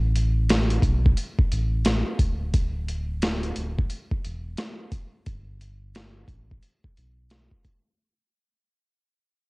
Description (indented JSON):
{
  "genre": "hip hop, boom-bap hip-hop",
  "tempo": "88 BPM",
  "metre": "4/4",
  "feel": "swing 63% on 16ths",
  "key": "G major",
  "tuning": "A4 = 440 Hz",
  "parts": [
    { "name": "sub bass with octave", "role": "bass", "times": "0.0-7.5 s", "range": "D1 to B1", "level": "-25 LUFS", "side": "equal", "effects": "none" },
    { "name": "boom bap sampler-style drum kit", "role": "drums", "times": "0.2-7.8 s", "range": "hi-hat, kick drum, rim click, snare drum", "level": "-24 LUFS", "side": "equal", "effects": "cassette tape" }
  ],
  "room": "little or no reverb",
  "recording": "home recording on cassette",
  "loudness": "-22 LUFS",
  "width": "side -28 dB against mid",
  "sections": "0.0-8.0 A section",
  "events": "fade-out 0.0-8.0",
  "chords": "none"
}